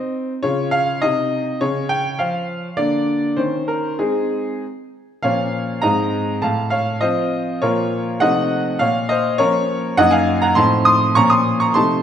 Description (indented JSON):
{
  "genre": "classical-period piano sonatina",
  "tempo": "101 BPM",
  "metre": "2/4",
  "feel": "straight",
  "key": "Ab major, Bb minor from 5.2 s",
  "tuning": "A4 = 438 Hz",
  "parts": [
    { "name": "bright grand piano", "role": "solo", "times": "0.0-12.0 s", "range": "Gb2 to Eb6", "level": "-16 LUFS", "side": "equal", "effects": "none" }
  ],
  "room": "moderate recital hall reverb, RT60 1.4 s",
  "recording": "minimal, uncompressed stereo recording",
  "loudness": "-16 LUFS",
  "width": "side -9 dB against mid",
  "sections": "0.0-5.2 A section; 5.2-12.0 B section",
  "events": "none",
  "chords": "0.4 Db; 1.0 Cm; 1.6 Db; 2.8 Bb/D; 3.4 Eb5; 4.0 Ab; 5.2 Bbm; 5.8 Ab; 6.4 F7/A; 7.6 Bbm; 8.2 F7/C; 8.8 Bbm; 10.0 Ebm/Gb; 10.6 F7/A; 11.2 Bbm"
}